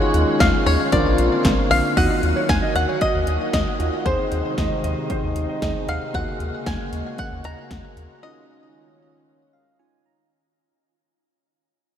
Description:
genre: synth-pop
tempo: 115 BPM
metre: 4/4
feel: straight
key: unclear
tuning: A4 = 440 Hz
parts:
  - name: bluegrass banjo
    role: melody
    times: 0.0-9.8 s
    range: C5 to Bb5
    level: -24 LUFS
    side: left 2 dB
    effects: ping-pong delay
  - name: soft electric-piano-like synth keys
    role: accompaniment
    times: 0.0-10.3 s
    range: Bb3 to Bb5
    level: -26 LUFS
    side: right 1 dB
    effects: chorus
  - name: sweeping resonant pad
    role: sustained chords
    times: 0.0-10.3 s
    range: C3 to Gb4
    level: -27 LUFS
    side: left 1 dB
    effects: chorus, phaser
  - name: round analog bass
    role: bass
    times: 0.1-8.1 s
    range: Bb1 to Eb2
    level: -24 LUFS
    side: equal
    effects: none
  - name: 80s electronic pad drums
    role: drums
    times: 0.1-8.1 s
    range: crash cymbal, handclaps, hi-hat, kick drum, snare drum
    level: -24 LUFS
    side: equal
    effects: none
  - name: warm concert grand piano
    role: second line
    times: 2.0-6.0 s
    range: C5 to Gb5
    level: -30 LUFS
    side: right 2 dB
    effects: analog chorus, ping-pong delay
room: wet huge ambient reverb, RT60 8.5 s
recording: dreamy mix soaked in reverb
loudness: -18 LUFS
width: side -9 dB against mid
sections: 0.0-2.0 A section; 2.0-10.3 B section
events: fade-out 2.0-10.3; break 8.2-10.3; synth keys fill 9.3-10.3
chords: 0.0 Dbadd9/Eb; 0.9 Bbadd9; 2.0 Ebmadd9; 4.1 Ab/Eb; 6.1 Gbadd9/Eb; 8.2 Dbadd9/Eb

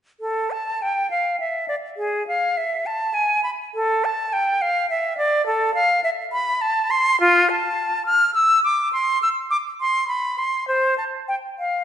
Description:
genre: classical, baroque-style fantasia for unaccompanied flute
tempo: 103 BPM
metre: 3/4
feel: uneven beats, rubato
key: A minor, C major from 7.2 s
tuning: A4 = 443 Hz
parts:
  - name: bright silver concert flute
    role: solo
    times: 0.2-11.8 s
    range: F4 to F6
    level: -18 LUFS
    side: equal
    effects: none
room: wet recital hall reverb, RT60 1.8 s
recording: recorded in a church or concert hall, nothing above 10.9 kHz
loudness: -18 LUFS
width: side -9 dB against mid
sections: 0.2-11.8 A section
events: none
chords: none

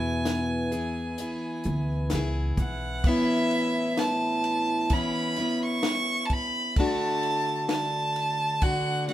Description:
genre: acoustic folk duo or small band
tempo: 65 BPM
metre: 4/4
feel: straight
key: A major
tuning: A4 = 440 Hz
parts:
  - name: warm fiddle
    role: melody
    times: 0.0-9.1 s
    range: E5 to C#6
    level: -29 LUFS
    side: right 1 dB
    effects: none
  - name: picked plugged-in steel-string acoustic guitar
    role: accompaniment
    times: 0.0-9.1 s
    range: E2 to G#4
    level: -28 LUFS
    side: left 1 dB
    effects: none
  - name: upright bass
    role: bass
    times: 0.0-3.0 s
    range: B1 to E2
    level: -30 LUFS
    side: equal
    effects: none
  - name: compact cocktail drum kit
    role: drums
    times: 0.3-9.1 s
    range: hi-hat, kick drum, ride cymbal, snare drum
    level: -28 LUFS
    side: equal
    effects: none
room: moderate studio reverb, RT60 0.8 s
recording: band playing live in one room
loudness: -24 LUFS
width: side -13 dB against mid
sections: 0.0-3.1 A section; 3.1-9.1 B section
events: none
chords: 0.0 E; 3.1 Aadd9; 6.8 D

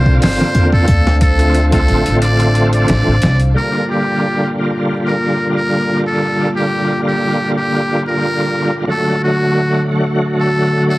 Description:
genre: trip hop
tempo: 90 BPM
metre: 4/4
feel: swing 53% on 16ths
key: G minor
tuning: A4 = 440 Hz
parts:
  - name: trumpet with metal mute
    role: melody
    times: 0.0-11.0 s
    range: F#4 to D5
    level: -19 LUFS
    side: equal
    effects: tape echo
  - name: bright tonewheel organ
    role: accompaniment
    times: 0.0-11.0 s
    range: D3 to F#4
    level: -17 LUFS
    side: equal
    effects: overdrive, chorus vibrato, fast rotary speaker, tremolo, vintage 12-bit sampler grit, low-pass filter
  - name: dark analog pad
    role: sustained chords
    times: 0.0-11.0 s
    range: D3 to F5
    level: -21 LUFS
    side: equal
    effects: wide subtle chorus
  - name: upright bass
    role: bass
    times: 0.0-3.5 s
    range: G1 to D2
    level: -14 LUFS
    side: equal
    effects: none
  - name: trip hop sampler-style drum kit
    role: drums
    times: 0.1-3.5 s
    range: hi-hat, kick drum, snare drum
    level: -15 LUFS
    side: equal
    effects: overdrive
room: little or no reverb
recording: heavily compressed radio sound, vinyl crackle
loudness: -12 LUFS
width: side -18 dB against mid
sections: 0.0-3.5 A section; 3.5-11.0 B section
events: kick drops out 2.2-3.5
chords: 0.0 C9sus4; 0.9 Dm7; 3.5 Gm7; 8.9 D

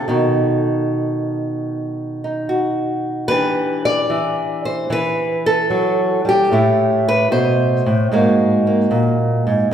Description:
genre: solo jazz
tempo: 75 BPM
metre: 4/4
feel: swing 68% on 8ths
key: E minor from 3.3 s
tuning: A4 = 440 Hz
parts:
  - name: nylon-string guitar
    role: solo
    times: 0.0-9.7 s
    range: G#2 to D5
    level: -15 LUFS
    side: equal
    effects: none
room: wet recital hall reverb, RT60 1.7 s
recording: recorded in a church or concert hall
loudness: -15 LUFS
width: side -9 dB against mid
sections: 0.0-3.3 A section; 3.3-9.7 B section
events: none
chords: 0.1 B7; 3.3 Em7; 6.5 Am; 8.1 G#9

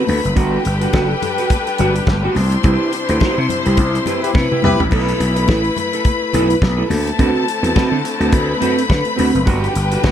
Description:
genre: disco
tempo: 105 BPM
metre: 4/4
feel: swing 56% on 16ths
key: G major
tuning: A4 = 441 Hz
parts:
  - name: rich studio string section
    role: second line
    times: 0.0-10.1 s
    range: G4 to C6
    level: -21 LUFS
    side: left 4 dB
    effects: tape echo
  - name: clean electric guitar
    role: accompaniment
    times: 0.0-10.1 s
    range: C4 to B4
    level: -20 LUFS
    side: right 4 dB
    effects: lush chorus
  - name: clear studio string section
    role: sustained chords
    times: 0.0-10.1 s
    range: C3 to B4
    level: -24 LUFS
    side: left 3 dB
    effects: none
  - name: gritty slap bass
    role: bass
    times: 0.1-10.1 s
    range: F#1 to D3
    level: -18 LUFS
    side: equal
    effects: overdrive
  - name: damped 70s drum kit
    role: drums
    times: 0.1-10.1 s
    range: crash cymbal, hi-hat, kick drum, snare drum, toms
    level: -19 LUFS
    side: equal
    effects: none
  - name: congas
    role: percussion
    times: 0.1-10.1 s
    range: none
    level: -27 LUFS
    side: left 6 dB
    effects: none
  - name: warm horn section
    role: stabs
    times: 4.2-4.8 s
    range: E4 to B4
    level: -19 LUFS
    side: left 3 dB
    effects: none
room: little or no reverb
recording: dark, warm production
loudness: -14 LUFS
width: side -10 dB against mid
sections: 0.0-10.1 A section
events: band accent 2.6-4.9; drum fill 4.3-4.9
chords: 0.4 Gmaj7; 2.4 Cmaj7; 4.9 B7sus4; 6.9 D13; 9.5 Gmaj7

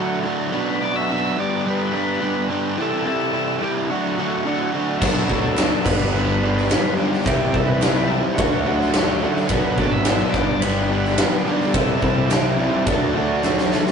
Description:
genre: classic rock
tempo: 107 BPM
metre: 4/4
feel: straight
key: D mixolydian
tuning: A4 = 441 Hz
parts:
  - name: overdriven tonewheel organ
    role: melody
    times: 0.0-13.7 s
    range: D4 to E5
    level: -27 LUFS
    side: left 1 dB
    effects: slow rotary speaker
  - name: string machine, cellos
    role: sustained chords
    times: 0.0-13.9 s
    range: F#3 to G#4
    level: -35 LUFS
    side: equal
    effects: none
  - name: overdriven semi-hollow guitar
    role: riff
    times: 0.0-13.9 s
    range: G2 to G4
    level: -22 LUFS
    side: right 1 dB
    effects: none
  - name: bright upright piano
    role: accompaniment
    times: 5.0-13.9 s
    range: none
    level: barely audible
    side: none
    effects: none
  - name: picked steel-string acoustic guitar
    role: accompaniment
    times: 5.0-13.9 s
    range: G2 to G4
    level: -32 LUFS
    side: left 2 dB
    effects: none
  - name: crunchy overdriven guitar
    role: riff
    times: 5.0-13.9 s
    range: G2 to E4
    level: -25 LUFS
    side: equal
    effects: spring reverb
  - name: growling fingered electric bass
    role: bass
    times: 5.0-13.7 s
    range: G1 to D2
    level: -26 LUFS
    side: equal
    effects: overdrive
  - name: huge arena drum kit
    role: drums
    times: 5.0-13.9 s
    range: crash cymbal, kick drum, ride cymbal, snare drum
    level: -21 LUFS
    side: left 1 dB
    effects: none
  - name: group handclap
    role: percussion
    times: 5.6-13.6 s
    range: none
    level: -36 LUFS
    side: right 3 dB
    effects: none
room: moderate booth ambience, RT60 0.2 s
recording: rough rehearsal-room recording, nothing above 10.7 kHz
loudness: -18 LUFS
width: side -6 dB against mid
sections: 0.0-13.9 A section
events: drum fill 13.4-13.9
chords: 0.0 D; 0.5 Bm7; 1.4 G; 2.8 C; 3.9 D; 5.0 Bm7; 5.9 G; 7.3 C; 8.4 D; 9.5 Bm7; 10.3 G; 11.7 C; 12.9 D

